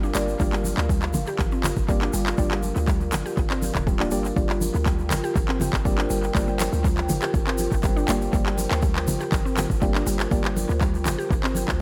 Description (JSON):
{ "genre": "afro house", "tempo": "121 BPM", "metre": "4/4", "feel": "straight", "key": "G minor", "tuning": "A4 = 440 Hz", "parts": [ { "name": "dark analog pad", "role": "sustained chords", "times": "0.0-11.8 s", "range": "F4 to G5", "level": "-33 LUFS", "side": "equal", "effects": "chorus, phaser, sidechain pumping" }, { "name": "mallet-like synth pluck", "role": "arpeggios", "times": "0.0-11.5 s", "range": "G3 to G4", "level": "-34 LUFS", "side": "equal", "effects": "chorus, sidechain pumping, tape echo" }, { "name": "deep mellow chord stab", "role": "stabs", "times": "0.0-11.8 s", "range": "Bb3 to D5", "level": "-33 LUFS", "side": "equal", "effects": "chorus, sidechain pumping, analog delay" }, { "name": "warm 808-style bass", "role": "bass", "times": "0.0-11.8 s", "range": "D1 to D2", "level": "-30 LUFS", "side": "equal", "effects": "sidechain pumping" }, { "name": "egg shaker", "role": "percussion", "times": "0.0-11.8 s", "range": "none", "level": "-39 LUFS", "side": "equal", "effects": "none" }, { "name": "electronic handclaps", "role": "drums", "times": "0.2-11.8 s", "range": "none", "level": "-32 LUFS", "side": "equal", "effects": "analog delay" }, { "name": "electronic kick drum", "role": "drums", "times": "0.4-11.8 s", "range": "none", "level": "-26 LUFS", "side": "equal", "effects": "none" }, { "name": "congas", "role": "percussion", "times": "0.6-11.7 s", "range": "none", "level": "-32 LUFS", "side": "equal", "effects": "none" } ], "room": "light reverb", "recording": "echo-heavy mix", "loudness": "-23 LUFS", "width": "mono", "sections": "0.0-11.8 A section", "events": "none", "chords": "0.0 Gm7" }